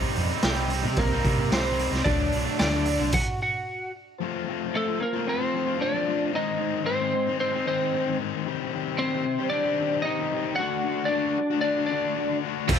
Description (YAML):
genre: quiet-loud alternative rock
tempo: 113 BPM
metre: 4/4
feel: straight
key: F mixolydian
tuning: A4 = 439 Hz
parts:
  - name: mellow tonewheel organ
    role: sustained chords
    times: 0.0-12.8 s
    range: Eb3 to C6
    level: -38 LUFS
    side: equal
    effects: slow rotary speaker
  - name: biting overdriven guitar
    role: riff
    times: 0.0-3.1, 12.7-12.8 s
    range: C3 to F4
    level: -30 LUFS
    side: right 14 dB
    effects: none
  - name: distorted electric guitar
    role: riff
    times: 0.0-12.8 s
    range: Ab2 to G4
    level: -29 LUFS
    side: left 14 dB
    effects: distortion
  - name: hollow-body short-scale fingered electric bass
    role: bass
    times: 0.0-3.1, 12.7-12.8 s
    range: C2 to C3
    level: -28 LUFS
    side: right 1 dB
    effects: none
  - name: raw garage drum kit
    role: drums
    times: 0.2-3.3, 12.7-12.8 s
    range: crash cymbal, hi-hat, kick drum, snare drum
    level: -27 LUFS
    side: right 1 dB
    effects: none
  - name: lightly driven lead guitar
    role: melody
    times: 0.4-12.4 s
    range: G3 to F#5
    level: -26 LUFS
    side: equal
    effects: none
  - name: tight distorted guitar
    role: riff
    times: 12.7-12.8 s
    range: F2 to F3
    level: -26 LUFS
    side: equal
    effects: distortion
room: light reverb, small room ambience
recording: none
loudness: -23 LUFS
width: side -7 dB against mid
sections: 0.0-4.2 A section; 4.2-12.8 A section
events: stop 3.1-4.2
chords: 0.0 Cm; 2.1 D; 4.2 F; 6.3 Ab; 8.5 Cm; 10.6 D